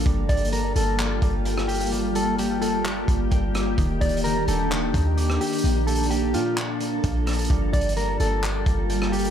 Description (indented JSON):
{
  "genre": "hip hop, atmospheric cloud-rap",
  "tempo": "129 BPM",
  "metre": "4/4",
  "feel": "half-time",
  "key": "unclear",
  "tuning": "A4 = 440 Hz",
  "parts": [
    { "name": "glassy FM pad", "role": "sustained chords", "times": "0.0-9.3 s", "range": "Eb3 to A4", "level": "-26 LUFS", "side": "left 1 dB", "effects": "ensemble chorus, built-in reverb, sidechain pumping" },
    { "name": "concert harp", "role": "arpeggios", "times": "0.0-9.3 s", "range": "Eb3 to D6", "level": "-33 LUFS", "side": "equal", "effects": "low-pass filter, ping-pong delay" },
    { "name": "clean 808-style bass", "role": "bass", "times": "0.0-9.3 s", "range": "Eb1 to Bb2", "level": "-25 LUFS", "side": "equal", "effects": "none" },
    { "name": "crunchy breakbeat drum kit", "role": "drums", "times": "0.0-9.3 s", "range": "handclaps, hi-hat, kick drum, rim click", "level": "-28 LUFS", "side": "equal", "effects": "none" },
    { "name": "mellow electric guitar", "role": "melody", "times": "0.3-9.3 s", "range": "F4 to D5", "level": "-29 LUFS", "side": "left 1 dB", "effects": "low-pass filter, ping-pong delay" }
  ],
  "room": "moderate plate reverb, RT60 1.3 s, studio ambience",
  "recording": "dreamy mix soaked in reverb",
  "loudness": "-21 LUFS",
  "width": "side -9 dB against mid",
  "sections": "0.0-9.3 A section",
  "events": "none",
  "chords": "0.1 Gm9; 3.8 Ebmaj7; 5.6 Bbmaj7; 7.5 Gm9"
}